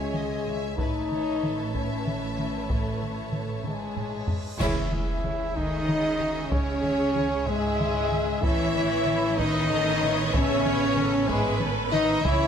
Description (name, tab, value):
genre	cinematic, epic orchestral film score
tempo	63 BPM (dotted quarters)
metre	6/8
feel	straight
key	unclear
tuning	A4 = 441 Hz
part	warm symphonic violin section	melody	0.0-12.5 s	G#4 to E5	-35 LUFS	left 2 dB	none
part	warm studio violin section	second line	0.0-12.5 s	E4 to A5	-37 LUFS	equal	none
part	dark symphonic viola section	accompaniment	0.0-12.5 s	A3 to E5	-35 LUFS	right 2 dB	none
part	mellow French horn section	sustained chords	0.0-12.5 s	G#3 to E4	-28 LUFS	left 3 dB	none
part	warm symphonic cello section	bass	0.0-12.5 s	G#2 to E3	-32 LUFS	right 2 dB	none
part	warm symphonic double bass section	bass	0.0-12.5 s	A1 to C#2	-34 LUFS	right 3 dB	none
part	taiko ensemble	drums	0.1-12.5 s	none	-31 LUFS	equal	none
part	reverse cymbal and impact	sound effects	4.2-6.5 s	none	-41 LUFS	equal	none
part	mellow trumpet	stabs	3.7-12.5 s	G#3 to E4	-33 LUFS	right 2 dB	none
part	warm symphonic string section	sustained chords	4.6-12.5 s	G#3 to C#5	-35 LUFS	left 1 dB	none
part	clash cymbals and concert bass drum	percussion	4.6-5.8 s	none	-34 LUFS	equal	none
part	timpani	percussion	4.6-5.5, 12.2-12.5 s	C#3	-36 LUFS	equal	none
room	light reverb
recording	close, detailed microphones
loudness	-23 LUFS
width	side -8 dB against mid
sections	0.0-4.6 A section; 4.6-12.5 A section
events	drum fill 3.7-4.6; reverse cymbal 4.2-4.6; band accent 4.6-5.2; impact 4.6-6.5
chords	0.0 C#m; 0.8 Aadd9; 4.6 C#m; 8.4 Aadd9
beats	| 0.79 1.75 | 2.70 3.66 | 4.61 5.57 | 6.52 7.48 | 8.43 9.39 | 10.34 11.30 | 12.25